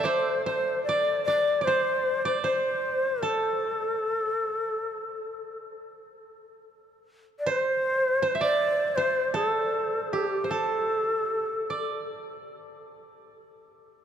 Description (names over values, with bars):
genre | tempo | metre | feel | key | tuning
japanese traditional, Japanese chamber music | 77 BPM | 4/4 | rubato | D suspended pentatonic | A4 = 442 Hz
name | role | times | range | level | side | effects
breathy shakuhachi | melody | 0.0-12.1 s | G4 to D5 | -26 LUFS | left 1 dB | none
koto | second line | 0.0-13.3 s | G4 to C6 | -30 LUFS | right 4 dB | none
room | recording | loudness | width
wet cathedral reverb, RT60 5.8 s | none | -24 LUFS | side -8 dB against mid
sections
0.1-14.0 A section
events
none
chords
none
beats
| 0.05 0.85 1.65 2.43 | 3.22 4.01 4.80 5.56 | 6.32 7.08 7.84 8.60 | 9.36 10.13 10.91 11.71 | 12.51